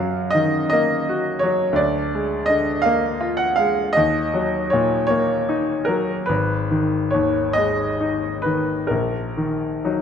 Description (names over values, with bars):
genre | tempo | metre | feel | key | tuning
classical, romantic nocturne for solo piano | 42-58 BPM (dotted quarters) | 6/8 | rubato | Eb minor | A4 = 440 Hz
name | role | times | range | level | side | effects
bright grand piano | solo | 0.0-10.0 s | Ab1 to Gb5 | -18 LUFS | equal | none
room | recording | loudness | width
moderate scoring stage reverb, RT60 1.9 s | none | -18 LUFS | side -8 dB against mid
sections
0.0-10.0 A section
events
none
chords
0.0 Ebm/Gb; 1.8 Bb7/D; 3.9 Ebm; 6.3 Abm; 8.9 Ebm/Bb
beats
0.71 | 1.79 2.84 | 3.95 5.11 | 6.30 7.57 | 8.91